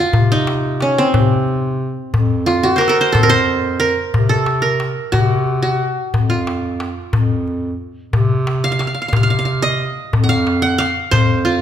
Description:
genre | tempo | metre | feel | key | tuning
Arabic maqam ensemble | 60 BPM (dotted quarters) | 6/8 | straight | F maqam hijaz | A4 = 441 Hz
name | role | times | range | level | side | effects
qanun | melody | 0.0-11.6 s | C4 to Gb5+25c | -17 LUFS | right 1 dB | none
dark bass clarinet | bass | 0.1-11.6 s | F2 to C3 | -20 LUFS | right 1 dB | none
darbuka | percussion | 0.1-11.5 s | none | -18 LUFS | left 3 dB | none
room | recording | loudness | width
wet recital hall reverb, RT60 1.5 s | minimal, uncompressed stereo recording | -14 LUFS | side -9 dB against mid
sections
0.0-11.6 A section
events
none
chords
none

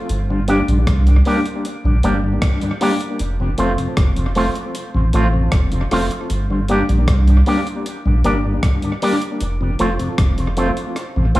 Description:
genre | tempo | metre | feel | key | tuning
roots reggae | 77 BPM | 4/4 | straight | G minor | A4 = 441 Hz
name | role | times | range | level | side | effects
warm sub bass | bass | 0.1-11.4 s | F1 to C2 | -16 LUFS | equal | none
breakbeat sampler-style drum kit | drums | 0.1-11.4 s | hi-hat, kick drum, rim click | -21 LUFS | equal | analog delay
tonewheel organ | accompaniment | 0.3-11.4 s | F2 to D4 | -22 LUFS | left 2 dB | analog delay
electric guitar with an envelope filter | accompaniment | 0.5-11.4 s | A3 to G4 | -22 LUFS | right 1 dB | tremolo, dub echo
room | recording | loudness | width
light reverb, digital ambience | echo-heavy mix, studio reverb | -15 LUFS | side -17 dB against mid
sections
0.0-11.4 A section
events
kick muted 11.0-11.4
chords
0.1 Gm; 3.2 F; 6.3 Gm; 9.4 F

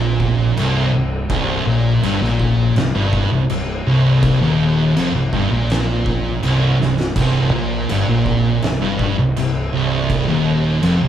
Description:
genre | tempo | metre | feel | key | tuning
stoner and doom metal | 82 BPM | 4/4 | straight | C minor | A4 = 440 Hz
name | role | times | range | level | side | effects
thick fuzz guitar | riff | 0.0-11.1 s | C2 to Bb2 | -20 LUFS | left 5 dB | distortion
thick fuzz guitar | riff | 0.0-11.1 s | C2 to Bb2 | -20 LUFS | right 6 dB | distortion
thick fuzz guitar | riff | 0.0-11.1 s | C2 to Bb2 | -21 LUFS | equal | distortion
fuzz fingered electric bass | bass | 0.0-11.1 s | C1 to Bb1 | -24 LUFS | equal | overdrive
oversized low-tuned drum kit | drums | 0.2-11.0 s | crash cymbal, kick drum, snare drum, splash cymbal | -24 LUFS | equal | none
room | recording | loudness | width
wet large studio reverb, RT60 0.9 s | band playing live in one room | -15 LUFS | side -10 dB against mid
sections
0.0-11.1 A section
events
drum fill 6.8-7.2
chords
0.0 Cm

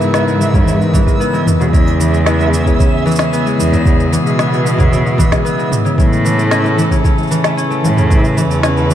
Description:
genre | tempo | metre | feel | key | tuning
folktronica | 113 BPM | 4/4 | straight | E major | A4 = 435 Hz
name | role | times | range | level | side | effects
rich string quartet | sustained chords | 0.0-8.9 s | D#3 to B4 | -22 LUFS | left 1 dB | none
concert harp | arpeggios | 0.0-8.9 s | C#3 to C#4 | -15 LUFS | left 1 dB | digital delay
rich cello | bass | 0.0-8.9 s | E2 to B2 | -17 LUFS | equal | none
organic electronic drum kit | drums | 0.0-8.9 s | shaker, snare drum, toms | -20 LUFS | equal | small room ambience
backwards swelling texture | texture | 0.0-8.9 s | E5 to E6 | -25 LUFS | right 5 dB | built-in reverb
electronic kick drum | drums | 0.5-8.2 s | none | -13 LUFS | right 1 dB | overdrive, small room ambience
room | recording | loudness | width
light reverb | dark, warm production | -11 LUFS | side -11 dB against mid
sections
0.0-8.9 A section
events
none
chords
0.0 C#m7; 1.7 E6; 6.0 A

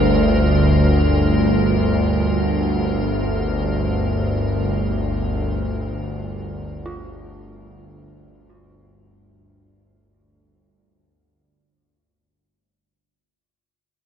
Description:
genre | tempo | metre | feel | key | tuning
dark ambient drone | free time | none | none | G minor | A4 = 441 Hz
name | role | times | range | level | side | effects
dark detuned synth bell | arpeggios | 0.0-13.4 s | F4 | -41 LUFS | right 3 dB | chorus
bowed-like drone | drone | 0.0-10.2 s | G1 to D2 | -18 LUFS | equal | built-in reverb
icy glass pad | texture | 0.0-10.2 s | F4 to Bb4 | -29 LUFS | equal | chorus, built-in reverb
room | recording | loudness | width
wet echo chamber reverb, RT60 2.6 s | echo-heavy mix, nothing above 10.6 kHz | -17 LUFS | side -8 dB against mid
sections
0.0-10.1 A section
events
fade-out on ambient pad 0.0-10.1; fade-out 0.0-10.1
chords
0.0 G5

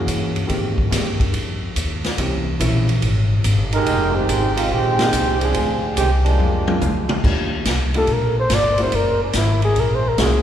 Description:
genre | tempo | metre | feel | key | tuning
jazz, big band swing | 142 BPM | 4/4 | swing 67% on 8ths | C minor, Eb major from 7.2 s | A4 = 440 Hz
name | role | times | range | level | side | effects
clear upright piano | accompaniment | 0.0-10.4 s | Eb3 to G#4 | -26 LUFS | equal | none
upright bass | bass | 0.0-10.4 s | F1 to Ab2 | -20 LUFS | equal | none
swinging big-band drum kit | drums | 0.1-10.3 s | crash cymbal, hi-hat, kick drum, ride cymbal, snare drum, toms | -23 LUFS | equal | none
clear trombone section | second line | 3.7-7.1 s | Eb3 to Bb4 | -21 LUFS | right 3 dB | none
trumpet with bucket mute | melody | 8.0-10.4 s | Db4 to D5 | -19 LUFS | left 1 dB | none
room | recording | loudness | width
wet church reverb, RT60 3.4 s | recorded in a church or concert hall | -16 LUFS | side -10 dB against mid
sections
0.0-7.2 A section; 7.2-10.4 B section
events
trombone section solo 0.0-7.2; drum fill 6.4-7.2; muted trumpet solo 7.2-10.4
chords
0.5 Abmaj9; 2.2 C7b9; 3.9 Fm11; 5.6 Dm7b5; 6.4 Bb7; 7.2 Ebmaj9; 8.9 Gb7

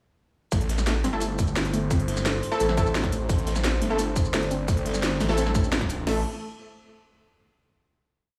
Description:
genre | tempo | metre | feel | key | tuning
dark technical drum and bass | 173 BPM | 4/4 | straight | A minor | A4 = 440 Hz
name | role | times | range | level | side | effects
dark analog pad | sustained chords | 0.8-6.2 s | A3 to C5 | -35 LUFS | equal | chorus, phaser, sidechain pumping
warbly dusty pluck | arpeggios | 0.5-6.2 s | A3 to C4 | -35 LUFS | equal | chorus, sidechain pumping, digital delay
phased detuned saw bass | bass | 0.5-6.2 s | G1 to A1 | -30 LUFS | equal | phaser, tube saturation
crunchy breakbeat drum kit | drums | 0.5-6.0 s | hi-hat, snare drum | -42 LUFS | equal | none
drum and bass drum kit | drums | 0.5-6.2 s | crash cymbal, kick drum, snare drum | -28 LUFS | equal | overdrive
drum and bass drum kit | drums | 0.5-6.0 s | hi-hat, shaker, snare drum | -32 LUFS | equal | none
orchestra-hit-like synth stab | stabs | 1.1-6.2 s | A3 to A4 | -32 LUFS | equal | built-in reverb, digital delay
room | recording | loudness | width
light reverb | studio reverb | -25 LUFS | mono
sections
0.5-6.1 drop; 6.1-7.5 final chord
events
drop 0.5-6.1; band accent 5.7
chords
0.5 Am

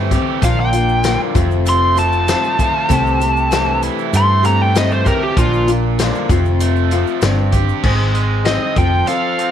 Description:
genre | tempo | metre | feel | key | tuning
folk rock and heartland rock | 97 BPM | 4/4 | straight | unclear | A4 = 440 Hz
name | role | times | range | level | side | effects
picked steel-string acoustic guitar | accompaniment | 0.0-9.5 s | F2 to A4 | -21 LUFS | left 12 dB | none
raw garage guitar | riff | 0.0-9.5 s | F2 to A4 | -22 LUFS | right 15 dB | overdrive
hollow-body short-scale picked electric bass | bass | 0.0-9.0 s | F1 to G2 | -17 LUFS | right 1 dB | none
vintage drum kit | drums | 0.1-9.5 s | crash cymbal, hi-hat, kick drum, snare drum | -20 LUFS | left 1 dB | none
tube shaker | percussion | 0.1-7.8 s | none | -36 LUFS | right 21 dB | none
bluesy overdriven lead guitar | melody | 0.4-9.5 s | F4 to C6 | -17 LUFS | equal | distortion
room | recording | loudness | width
small room reverb | 1960s-style stereo with parts hard left and right | -13 LUFS | side -9 dB against mid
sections
0.0-7.8 A section; 7.8-9.5 B section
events
lead electric guitar solo 0.0-7.8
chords
0.4 Bb; 1.4 F; 2.9 C6; 5.4 Bb; 6.3 F; 7.2 Gsus4; 7.8 Ab; 8.8 F

